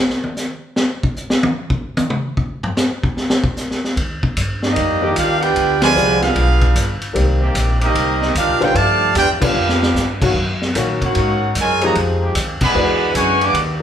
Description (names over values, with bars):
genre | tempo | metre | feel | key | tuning
jazz, big band swing | 150 BPM | 4/4 | swing 65% on 8ths | Eb major | A4 = 440 Hz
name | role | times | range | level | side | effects
vintage drum kit | drums | 0.1-13.7 s | crash cymbal, hi-hat, kick drum, ride cymbal, snare drum, toms | -20 LUFS | equal | none
upright bass | bass | 4.0-13.8 s | G1 to Bb2 | -20 LUFS | equal | none
clear trumpet section | melody | 4.6-13.6 s | Bb3 to D6 | -17 LUFS | equal | none
warm trombone section | second line | 4.6-13.6 s | Db3 to G4 | -22 LUFS | right 4 dB | none
clear baby grand piano | accompaniment | 5.0-13.8 s | D3 to G4 | -21 LUFS | left 2 dB | none
clear trombone section | sustained chords | 5.0-13.8 s | Eb3 to G4 | -27 LUFS | left 1 dB | none
room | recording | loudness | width
wet large studio reverb, RT60 1.1 s | band playing live in one room | -15 LUFS | side -9 dB against mid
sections
0.0-4.0 A section; 4.0-13.8 B section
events
drum solo 0.0-4.0; band accent 5.8, 9.4, 12.5; drum fill 9.6-9.9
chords
0.0 N.C.; 4.0 Ebmaj7; 5.6 G7b9; 7.2 Cm7; 8.8 G7#11; 10.3 Gb6; 11.9 Fm9; 12.7 E13